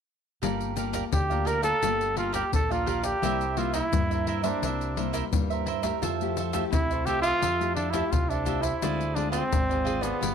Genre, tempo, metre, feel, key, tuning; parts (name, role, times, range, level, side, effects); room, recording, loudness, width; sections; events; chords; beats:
samba and choro; 86 BPM; 4/4; straight; G minor; A4 = 440 Hz
cavaquinho; accompaniment; 0.4-10.3 s; E4 to F5; -32 LUFS; right 11 dB
nylon-string guitar; accompaniment; 0.4-10.3 s; G2 to A4; -33 LUFS; left 10 dB
fingered electric bass; bass; 0.4-10.3 s; G1 to G2; -33 LUFS; right 1 dB
egg shaker, surdo and pandeiro; percussion; 0.4-10.3 s; -30 LUFS; left 2 dB
mellow trumpet; melody; 1.1-10.3 s; B3 to Bb4; -28 LUFS; right 1 dB
moderate echo chamber reverb, RT60 1.3 s; 1960s-style stereo with parts hard left and right; -24 LUFS; side -7 dB against mid
0.4-10.3 A section
0.4 Gm9; 3.2 C7; 6.0 Fmaj9; 8.8 Dm7b5
| 0.43 1.13 1.83 2.53 | 3.23 3.92 4.62 5.32 | 6.02 6.72 7.42 8.12 | 8.82 9.52 10.22